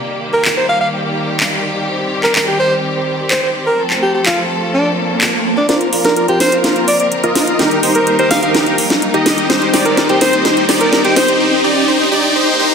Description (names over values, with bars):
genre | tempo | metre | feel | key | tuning
EDM, festival progressive house | 126 BPM | 4/4 | straight | Bb major | A4 = 440 Hz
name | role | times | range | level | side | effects
rich studio string section | sustained chords | 0.0-11.4 s | Eb3 to C5 | -20 LUFS | equal | none
warm alto saxophone | melody | 0.3-11.3 s | D4 to F5 | -17 LUFS | equal | dub echo
house drum kit | drums | 0.4-11.4 s | handclaps, hi-hat, snare drum | -16 LUFS | equal | overdrive
swell and riser | sound effects | 4.9-12.7 s | none | -20 LUFS | right 1 dB | none
dense compressed supersaw | riff | 5.7-12.7 s | Eb4 to Eb5 | -15 LUFS | equal | low-pass filter, dub echo
room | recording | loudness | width
wet lush hall reverb, RT60 2.0 s, digital ambience | dense, heavily limited modern master, high-pass filter | -11 LUFS | side -6 dB against mid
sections
0.0-5.7 A section; 5.7-12.7 B section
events
swell 4.9-5.7, 12.4-12.7; build-up 5.7-12.7; drum fill 5.7-11.4; riser 5.7-12.7; filter sweep on supersaw synth 5.7-12.7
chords
0.0 Eb; 1.9 Cm; 3.8 F; 5.7 Bbsus2; 7.6 Eb; 9.5 Cm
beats
0.45 0.93 1.40 | 1.88 2.35 2.83 3.31 | 3.78 4.26 4.74 5.21 | 5.69 6.17 6.64 7.12 | 7.59 8.07 8.55 9.02 | 9.50 9.97 10.45 10.93 | 11.40 11.88 12.36